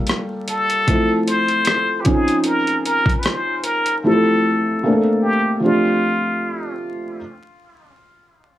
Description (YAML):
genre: lo-fi hip hop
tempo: 76 BPM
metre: 4/4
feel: swing 56% on 16ths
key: F major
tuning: A4 = 440 Hz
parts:
  - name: felt-muted upright piano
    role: accompaniment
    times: 0.0-7.2 s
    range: F3 to A4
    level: -18 LUFS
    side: equal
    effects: cassette tape, low-pass filter
  - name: boom bap sampler-style drum kit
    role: drums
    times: 0.1-4.0 s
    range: hi-hat, kick drum, rim click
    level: -21 LUFS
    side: equal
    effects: overdrive
  - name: trumpet with plunger mute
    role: melody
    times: 0.5-6.8 s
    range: F4 to C5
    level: -20 LUFS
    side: left 1 dB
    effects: low-pass filter
room: moderate small room reverb, RT60 0.5 s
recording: dry, gritty hardware recording, vinyl crackle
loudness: -16 LUFS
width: side -13 dB against mid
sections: 0.0-7.2 A section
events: none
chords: 0.0 Gm9; 0.9 Fmaj7; 2.1 Dbmaj9; 4.0 Fmaj7; 4.8 D5; 5.6 F69